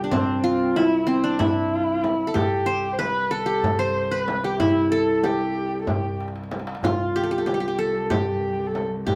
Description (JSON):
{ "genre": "Turkish makam ensemble", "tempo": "188 BPM (eighths)", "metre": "7/8", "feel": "straight", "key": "C makam rast", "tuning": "A4 = 440 Hz", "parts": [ { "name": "qanun", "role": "melody", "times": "0.0-9.2 s", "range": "C4 to C5", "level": "-25 LUFS", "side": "equal", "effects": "plate reverb" }, { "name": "warm kamancheh", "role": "second line", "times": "0.0-9.2 s", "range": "C4 to C5", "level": "-29 LUFS", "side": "equal", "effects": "none" }, { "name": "dark cello", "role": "drone", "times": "0.0-9.2 s", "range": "C2", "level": "-36 LUFS", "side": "equal", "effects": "none" }, { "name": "darbuka", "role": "percussion", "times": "0.1-9.2 s", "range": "none", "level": "-33 LUFS", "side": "equal", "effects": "none" }, { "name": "frame drum", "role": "percussion", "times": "0.1-9.2 s", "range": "none", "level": "-31 LUFS", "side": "equal", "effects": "none" } ], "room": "moderate studio reverb, RT60 0.6 s", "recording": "none", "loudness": "-23 LUFS", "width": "mono", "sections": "0.0-9.2 A section", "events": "drum fill 6.2-6.8", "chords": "none", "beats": "| 0.12 0.44 0.76 1.08 1.40 1.72 2.04 | 2.36 2.68 3.00 3.32 3.64 3.96 4.28 | 4.59 4.92 5.24 5.55 5.87 6.19 6.51 | 6.83 7.15 7.47 7.79 8.11 8.43 8.75 | 9.07" }